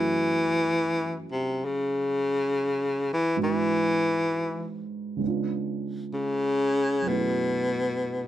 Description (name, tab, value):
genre	jazz ballad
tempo	65 BPM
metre	4/4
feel	swing 69% on 8ths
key	F# minor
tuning	A4 = 442 Hz
part	warm baritone saxophone	melody	0.0-8.3 s	B2 to E3	-24 LUFS	left 1 dB	none
part	dark upright piano	accompaniment	0.0-8.3 s	F#2 to G#4	-32 LUFS	right 4 dB	none
room	moderate studio reverb, RT60 0.7 s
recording	none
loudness	-24 LUFS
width	side -12 dB against mid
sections	0.0-7.1 A section; 7.1-8.3 B section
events	baritone saxophone solo 0.0-7.1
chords	0.0 F#m9; 3.4 G#m7b5; 5.2 C#7b9; 7.1 F#m9